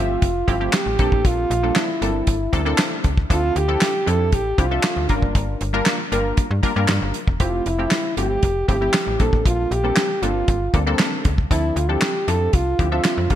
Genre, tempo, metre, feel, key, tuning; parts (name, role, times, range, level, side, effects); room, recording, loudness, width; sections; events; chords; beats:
early-eighties boogie funk; 117 BPM; 4/4; straight; A4 = 442 Hz
mellow French horn; melody; 0.0-13.4 s; D4 to A4; -23 LUFS; right 1 dB; ping-pong delay
funky polysynth comp; accompaniment; 0.0-13.4 s; F3 to E5; -25 LUFS; left 1 dB; chorus
slap-like FM bass; bass; 0.0-13.4 s; E1 to G2; -23 LUFS; equal
damped 70s drum kit; drums; 0.2-13.4 s; handclaps, hi-hat, kick drum, snare drum; -20 LUFS; equal; gated reverb
light reverb, studio reverb; bright 1980s-style digital production; -17 LUFS; side -11 dB against mid
0.0-13.4 A section
0.0 Fmaj9; 1.0 Bbmaj13; 3.3 Dm9; 5.1 Gm7; 7.4 Fmaj9; 9.2 Bbmaj13; 11.5 Dm9
0.23 0.74 | 1.25 1.76 2.28 2.79 | 3.30 3.81 4.33 4.84 | 5.35 5.87 6.38 6.89 | 7.41 7.92 8.43 8.94 | 9.46 9.97 10.48 10.99 | 11.51 12.02 12.53 13.05